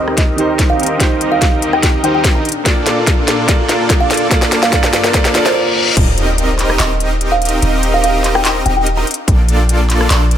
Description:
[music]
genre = future bass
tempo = 145 BPM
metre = 4/4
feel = half-time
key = Eb lydian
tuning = A4 = 440 Hz
[part]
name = warm baby grand piano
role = accompaniment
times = 0.0-6.0 s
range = Eb3 to D5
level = -21 LUFS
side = right 2 dB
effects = sidechain pumping, tape echo
[part]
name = warm studio string section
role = sustained chords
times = 0.0-5.5 s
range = Eb2 to A4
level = -27 LUFS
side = left 3 dB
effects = stereo widening, sidechain pumping
[part]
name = supersaw chords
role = riff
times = 0.0-10.4 s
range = Bb3 to Eb5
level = -18 LUFS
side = equal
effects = sidechain pumping, low-pass filter
[part]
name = riser, reverse cymbal and sub drop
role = sound effects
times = 2.8-7.6 s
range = none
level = -23 LUFS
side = left 2 dB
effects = none
[part]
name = trap drum kit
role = drums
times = 0.1-10.4 s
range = crash cymbal, handclaps, hi-hat, rim click, snare drum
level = -18 LUFS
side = left 1 dB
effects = none
[part]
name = kalimba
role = melody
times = 0.2-10.3 s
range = Bb4 to Bb5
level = -19 LUFS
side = right 1 dB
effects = sidechain pumping, digital delay
[part]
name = electronic kick drum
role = drums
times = 0.2-6.1, 9.3-9.4 s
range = none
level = -14 LUFS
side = equal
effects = none
[part]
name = warm 808-style bass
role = bass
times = 6.0-10.4 s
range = Eb1 to Bb1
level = -15 LUFS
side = equal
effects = sidechain pumping
[sound]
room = light reverb, digital ambience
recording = none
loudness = -11 LUFS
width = side -10 dB against mid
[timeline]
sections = 0.0-6.0 A section; 6.0-10.4 B section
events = build-up 0.0-6.0; drum fill 0.0-5.6; filter sweep on supersaw synth 0.0-6.0; reverse cymbal 5.2-6.0; drop 6.0-10.4; impact 6.0-7.6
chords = 0.0 Eb6; 2.5 Bbmaj7; 4.3 Gm7; 6.0 Eb6; 9.1 Bbmaj7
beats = 0.17 0.59 | 1.00 1.42 1.83 2.24 | 2.66 3.07 3.48 3.90 | 4.31 4.73 5.14 5.55 | 5.97 6.38 6.79 7.21 | 7.62 8.04 8.45 8.86 | 9.28 9.69 10.11

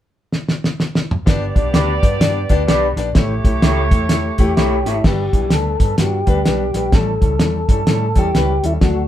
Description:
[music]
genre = uptempo 1960s-style soul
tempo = 127 BPM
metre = 4/4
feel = swing 61% on 8ths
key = G major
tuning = A4 = 440 Hz
[part]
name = cloth-damped thuddy drum kit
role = drums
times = 0.3-9.0 s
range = crash cymbal, hi-hat, kick drum, snare drum, toms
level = -16 LUFS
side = equal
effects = none
[part]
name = warm horn section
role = second line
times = 1.3-4.8 s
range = A3 to D5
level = -23 LUFS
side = right 2 dB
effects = none
[part]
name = warm baby grand piano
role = accompaniment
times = 1.3-9.0 s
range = F#3 to A5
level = -22 LUFS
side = left 3 dB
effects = none
[part]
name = vintage muted fingered electric bass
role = bass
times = 1.3-9.1 s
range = G1 to A2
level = -21 LUFS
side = equal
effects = none
[part]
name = electric guitar through a small old amp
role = stabs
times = 1.7-5.0 s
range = E4 to D5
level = -22 LUFS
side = right 1 dB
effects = none
[part]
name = tonewheel organ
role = melody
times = 4.4-9.1 s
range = E4 to A4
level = -21 LUFS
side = left 2 dB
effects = overdrive, slow rotary speaker
[sound]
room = moderate studio reverb, RT60 0.6 s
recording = band playing live in one room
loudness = -14 LUFS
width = side -12 dB against mid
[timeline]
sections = 0.0-1.3 A section; 1.3-5.0 B section; 5.0-9.1 C section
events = drum fill 0.3-1.3; grand piano fill 4.3-5.0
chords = 0.0 N.C.; 1.3 G; 3.2 A7; 5.0 G; 6.9 A7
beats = 0.33 0.80 | 1.27 1.74 2.21 2.69 | 3.16 3.63 4.10 4.57 | 5.04 5.52 5.99 6.46 | 6.93 7.40 7.87 8.35 | 8.82

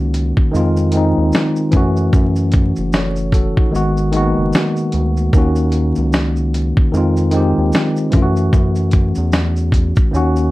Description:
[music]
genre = lo-fi hip hop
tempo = 75 BPM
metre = 4/4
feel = swing 60% on 16ths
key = unclear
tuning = A4 = 441 Hz
[part]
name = tine electric piano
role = accompaniment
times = 0.0-10.5 s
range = Eb3 to Db5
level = -16 LUFS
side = equal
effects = fast stereo tremolo, cassette tape, low-pass filter, plate reverb
[part]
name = round analog bass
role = bass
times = 0.0-10.5 s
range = Gb1 to Gb2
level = -18 LUFS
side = equal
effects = none
[part]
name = dusty soul sampler-style drum kit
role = drums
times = 0.1-10.5 s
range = hi-hat, kick drum, shaker, snare drum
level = -15 LUFS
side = equal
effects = none
[sound]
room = light reverb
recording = vinyl crackle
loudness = -13 LUFS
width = side -18 dB against mid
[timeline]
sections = 0.0-10.5 A section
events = drum fill 10.1-10.5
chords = 0.0 Ebm7; 0.5 Fm7; 1.7 Gbm7; 3.7 Abm7; 5.3 Ebm7; 6.9 Fm7; 8.1 Gbm7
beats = 0.53 1.33 | 2.13 2.93 3.73 4.53 | 5.33 6.13 6.93 7.73 | 8.53 9.33 10.13

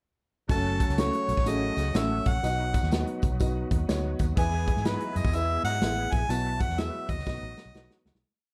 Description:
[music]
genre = uptempo 1960s-style soul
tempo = 124 BPM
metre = 4/4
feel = swing 63% on 8ths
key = unclear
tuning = A4 = 442 Hz
[part]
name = warm harmonica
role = melody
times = 0.5-8.1 s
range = B4 to A5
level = -33 LUFS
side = equal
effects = none
[part]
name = warm horn section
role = second line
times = 0.5-5.8 s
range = B2 to A4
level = -40 LUFS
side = equal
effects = none
[part]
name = warm upright piano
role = accompaniment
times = 0.5-8.1 s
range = B2 to F#5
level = -36 LUFS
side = equal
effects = none
[part]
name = overdriven tonewheel organ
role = sustained chords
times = 0.5-8.2 s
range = F#3 to G#4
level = -42 LUFS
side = equal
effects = slow rotary speaker, chorus vibrato
[part]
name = vintage muted fingered electric bass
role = bass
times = 0.5-8.2 s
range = F#1 to G#2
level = -33 LUFS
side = equal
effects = none
[part]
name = natural country drum kit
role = drums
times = 0.5-8.2 s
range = hi-hat, kick drum, snare drum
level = -31 LUFS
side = equal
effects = none
[part]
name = tambourine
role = percussion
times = 0.5-8.1 s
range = none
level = -54 LUFS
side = equal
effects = none
[sound]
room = moderate studio reverb, RT60 0.6 s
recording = dark, warm production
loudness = -27 LUFS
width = mono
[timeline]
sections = 0.5-8.2 pre-chorus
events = fade-out 6.3-8.2; drum fill 7.3-8.2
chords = 0.5 F#m; 2.4 B; 4.4 E; 6.3 Bsus4; 7.3 B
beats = | 0.49 0.98 1.46 1.95 | 2.44 2.92 3.40 3.89 | 4.37 4.85 5.33 5.82 | 6.30 6.78 7.26 7.75

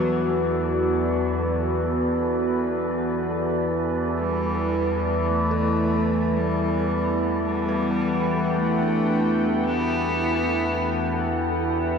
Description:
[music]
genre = dark ambient drone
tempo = free time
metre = none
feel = none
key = E minor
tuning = A4 = 440 Hz
[part]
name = bright cello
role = melody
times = 0.0-11.3 s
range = F#3 to B3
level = -28 LUFS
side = right 1 dB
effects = analog delay
[part]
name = deep dark ambient pad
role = sustained chords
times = 0.0-12.0 s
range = B3 to G5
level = -25 LUFS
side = equal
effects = chorus, built-in reverb
[part]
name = overtone-sweeping drone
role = drone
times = 0.0-12.0 s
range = E2 to E3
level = -25 LUFS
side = left 1 dB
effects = chorus, built-in reverb, phaser
[part]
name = wind-like tuned noise texture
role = texture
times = 0.0-12.0 s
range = A4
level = -34 LUFS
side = right 2 dB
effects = built-in reverb
[part]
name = dark detuned synth bell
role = arpeggios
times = 5.5-12.0 s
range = D4 to B4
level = -35 LUFS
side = right 2 dB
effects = none
[sound]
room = wet lush hall reverb, RT60 2.8 s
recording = dreamy mix soaked in reverb, cassette tape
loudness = -21 LUFS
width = side -6 dB against mid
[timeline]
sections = 0.0-12.0 A section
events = none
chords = 0.0 Bm; 3.1 Em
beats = free time

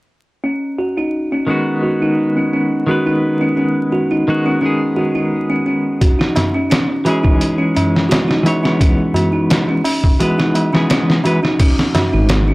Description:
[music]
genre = trip hop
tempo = 86 BPM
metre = 4/4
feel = swing 53% on 16ths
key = unclear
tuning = A4 = 441 Hz
[part]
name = music box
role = arpeggios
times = 0.4-12.5 s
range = C#4 to F#4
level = -18 LUFS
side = equal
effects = low-pass filter, analog delay
[part]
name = clean electric guitar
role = accompaniment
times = 1.5-11.4 s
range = D#3 to C#5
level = -18 LUFS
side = equal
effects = tremolo, low-pass filter, tape echo
[part]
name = trip hop sampler-style drum kit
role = drums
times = 6.0-12.5 s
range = crash cymbal, hi-hat, kick drum, snare drum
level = -16 LUFS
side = equal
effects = none
[part]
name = tabla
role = percussion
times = 6.0-12.4 s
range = none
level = -23 LUFS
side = right 1 dB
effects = none
[part]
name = dark detuned saw bass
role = bass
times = 12.1-12.5 s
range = G#1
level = -13 LUFS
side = equal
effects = tube saturation
[sound]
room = little or no reverb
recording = dry, gritty hardware recording, vinyl crackle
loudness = -13 LUFS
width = side -22 dB against mid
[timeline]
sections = 0.4-11.6 A section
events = none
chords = 0.4 G#m7; 6.0 E; 11.6 G#7(no3)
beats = | 0.44 1.14 1.83 2.53 | 3.23 3.93 4.62 5.32 | 6.02 6.72 7.41 8.11 | 8.81 9.51 10.21 10.90 | 11.60 12.30

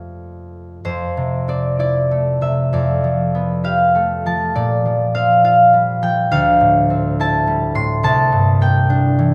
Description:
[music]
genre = classical, solo harp piece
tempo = 54-71 BPM (dotted quarters)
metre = 6/8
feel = rubato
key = F major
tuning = A4 = 440 Hz
[part]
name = concert harp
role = solo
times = 0.0-9.3 s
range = C2 to C6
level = -16 LUFS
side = equal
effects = none
[sound]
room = wet recital hall reverb, RT60 1.8 s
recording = recorded in a church or concert hall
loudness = -16 LUFS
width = mono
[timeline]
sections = 0.9-9.3 A section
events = none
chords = 0.0 Fadd9; 0.9 Fmaj7; 2.7 G9/F; 4.6 Bb69; 6.3 Dm11; 8.1 C9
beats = | 0.86 1.80 | 2.73 3.65 | 4.56 5.44 | 6.32 7.20 | 8.05 8.90

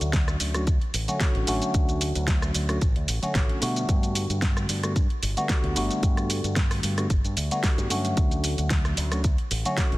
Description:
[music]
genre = nu-disco, nu disco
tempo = 112 BPM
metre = 4/4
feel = swing 54% on 16ths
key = D major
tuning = A4 = 440 Hz
[part]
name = bright tine electric piano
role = accompaniment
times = 0.0-10.0 s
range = D3 to F#4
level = -29 LUFS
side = equal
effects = phaser, sidechain pumping, tape echo
[part]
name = fingered electric bass with an envelope filter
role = bass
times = 0.0-10.0 s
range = G1 to B2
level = -28 LUFS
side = equal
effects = none
[part]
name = pop drum kit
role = drums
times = 0.0-10.0 s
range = hi-hat, rim click, shaker, snare drum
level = -30 LUFS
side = equal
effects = none
[part]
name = electronic kick drum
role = drums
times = 0.1-9.9 s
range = none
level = -24 LUFS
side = equal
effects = none
[sound]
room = little or no reverb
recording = dense, heavily limited modern master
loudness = -22 LUFS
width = side -18 dB against mid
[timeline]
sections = 0.0-10.0 A section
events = none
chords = 0.0 Dmaj7; 3.9 Gmaj9; 8.2 Dmaj7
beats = 0.14 0.67 1.21 | 1.74 2.28 2.81 3.35 | 3.89 4.42 4.96 5.49 | 6.03 6.57 7.10 7.64 | 8.17 8.71 9.24 9.78

